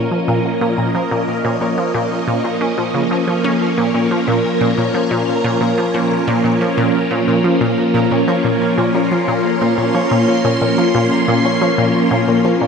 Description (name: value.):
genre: ambient, sequencer-driven space music.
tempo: 90 BPM.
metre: 4/4.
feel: straight.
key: Bb minor.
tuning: A4 = 439 Hz.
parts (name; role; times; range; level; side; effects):
phased string machine; sustained chords; 0.0-12.7 s; F3 to C6; -16 LUFS; equal; ensemble chorus, phaser.
concert harp; arpeggios; 0.0-12.7 s; Bb3 to Db5; -22 LUFS; left 5 dB; auto-pan, analog delay.
resonant blip pluck; riff; 0.0-12.7 s; Bb2 to Db4; -19 LUFS; equal; chorus, analog delay.
pulsing gated texture; texture; 0.0-12.7 s; Bb4; -25 LUFS; right 6 dB; chorus, built-in reverb.
room: moderate plate reverb, RT60 3.5 s.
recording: dreamy mix soaked in reverb.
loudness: -14 LUFS.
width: side -6 dB against mid.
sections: 0.0-12.7 A section.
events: fade-in on harp 0.0-12.7; fade-in on string machine 0.0-12.7.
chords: 0.0 Bbm.